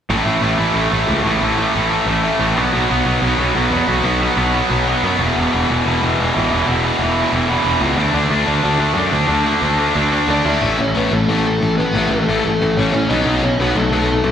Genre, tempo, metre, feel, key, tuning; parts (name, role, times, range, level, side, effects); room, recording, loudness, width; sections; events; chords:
punk; 182 BPM; 4/4; straight; A4 = 439 Hz
distorted electric guitar; riff; 0.1-10.6 s; E2 to D4; -20 LUFS; right 12 dB; overdrive, slapback echo
tight distorted guitar; riff; 0.1-14.3 s; E2 to D4; -18 LUFS; left 7 dB; distortion, slapback echo
fuzz picked electric bass; bass; 0.1-14.3 s; E1 to F#2; -19 LUFS; equal; overdrive
bluesy overdriven lead guitar; melody; 10.3-14.3 s; A3 to E5; -19 LUFS; equal; distortion, slapback echo
digital ambience; live gig heard through the venue's PA, recital hall reverb; -14 LUFS; side -8 dB against mid
0.1-10.6 A section; 10.6-14.3 B section
0.1 A5; 2.6 B5; 5.2 E5; 8.0 D5; 10.6 A; 13.1 B